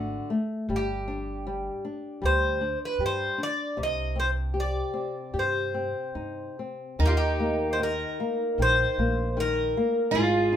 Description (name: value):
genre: fado-style ballad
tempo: 77 BPM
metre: 4/4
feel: rubato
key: C minor, Eb major from 7.0 s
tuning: A4 = 440 Hz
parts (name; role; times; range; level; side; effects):
- Greek bouzouki; melody; 0.0-10.6 s; F4 to Eb5; -28 LUFS; equal; none
- flamenco guitar; accompaniment; 0.0-10.6 s; C3 to G4; -30 LUFS; left 3 dB; none
- upright bass; bass; 0.0-10.6 s; G1 to G2; -30 LUFS; equal; none
- picked twelve-string acoustic guitar; second line; 7.0-10.6 s; Eb4 to F4; -28 LUFS; right 3 dB; none
room: moderate studio reverb, RT60 0.6 s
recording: minimal, uncompressed stereo recording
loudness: -24 LUFS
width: side -9 dB against mid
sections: 0.0-7.0 A section; 7.0-10.6 B section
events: none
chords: 0.0 D; 0.7 G5; 3.8 Cmadd9; 7.0 Eb5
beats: | 0.70 1.46 2.23 3.00 | 3.78 4.56 5.35 6.17 | 7.00 7.81 8.60 9.37 | 10.14